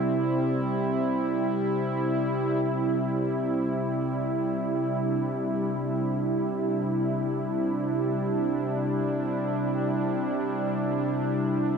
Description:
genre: ambient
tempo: free time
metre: none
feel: none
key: C major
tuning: A4 = 440 Hz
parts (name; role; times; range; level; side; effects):
- warm analog pad; solo; 0.0-11.8 s; C3 to E4; -25 LUFS; right 1 dB; chorus, ping-pong delay
room: wet lush hall reverb, RT60 2.7 s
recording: dark, warm production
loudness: -25 LUFS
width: side -6 dB against mid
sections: 0.0-2.6 A section; 2.6-11.8 B section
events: none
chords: 0.0 C

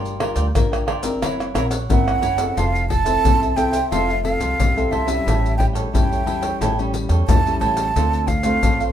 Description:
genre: samba and choro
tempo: 89 BPM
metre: 4/4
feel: straight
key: F major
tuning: A4 = 440 Hz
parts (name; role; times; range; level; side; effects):
- cavaquinho; accompaniment; 0.0-8.9 s; D4 to G5; -27 LUFS; right 1 dB; none
- nylon-string guitar; accompaniment; 0.0-8.9 s; A2 to Bb4; -25 LUFS; left 3 dB; none
- upright bass; bass; 0.0-8.9 s; F1 to E2; -24 LUFS; equal; none
- maracas, pandeiro, tamborim and surdo; percussion; 0.1-8.9 s; none; -22 LUFS; left 1 dB; none
- breathy jazz flute; melody; 1.9-8.9 s; E5 to A5; -22 LUFS; right 5 dB; none
room: moderate studio reverb, RT60 0.7 s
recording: minimal, uncompressed stereo recording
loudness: -17 LUFS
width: side -10 dB against mid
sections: 0.0-2.6 A section; 2.6-8.9 B section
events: none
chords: 0.0 Gm7; 1.2 Gb7#11; 2.6 Fmaj7; 5.3 A7; 8.0 Dm7

